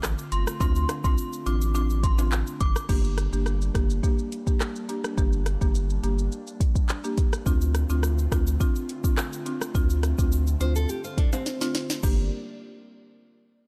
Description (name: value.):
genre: dancehall.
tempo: 105 BPM.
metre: 4/4.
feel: straight.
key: G minor.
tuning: A4 = 439 Hz.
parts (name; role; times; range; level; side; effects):
airy breathy pad; sustained chords; 0.0-12.3 s; D3 to F4; -42 LUFS; equal; chorus, sidechain pumping.
saturated sub bass; bass; 0.0-12.3 s; G1 to D2; -27 LUFS; equal; none.
afro-pop drum kit; drums; 0.0-12.2 s; crash cymbal, handclaps, hi-hat, kick drum, rim click, shaker, snare drum; -28 LUFS; equal; none.
egg shaker and timbales; percussion; 0.0-2.9, 7.5-12.3 s; none; -42 LUFS; equal; none.
synth chime; melody; 0.3-2.7 s; C6 to D6; -37 LUFS; equal; ensemble chorus, phaser, delay.
buzzing marimba with medium mallets; accompaniment; 0.6-12.3 s; Bb3 to G4; -35 LUFS; equal; none.
nylon-string guitar; arpeggios; 10.6-12.0 s; C4 to C5; -36 LUFS; equal; delay.
room: little or no reverb.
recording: none.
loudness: -25 LUFS.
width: mono.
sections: 0.0-2.9 A section; 2.9-12.0 B section; 12.0-13.7 C section.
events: drum fill 11.5-12.0.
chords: 0.0 Dm7; 2.9 Gm; 7.5 Dm7; 12.0 Gm.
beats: 0.03 | 0.60 1.18 1.75 2.32 | 2.89 3.46 4.03 4.61 | 5.18 5.75 6.32 6.89 | 7.46 8.03 8.61 9.18 | 9.75 10.32 10.89 11.46 | 12.03.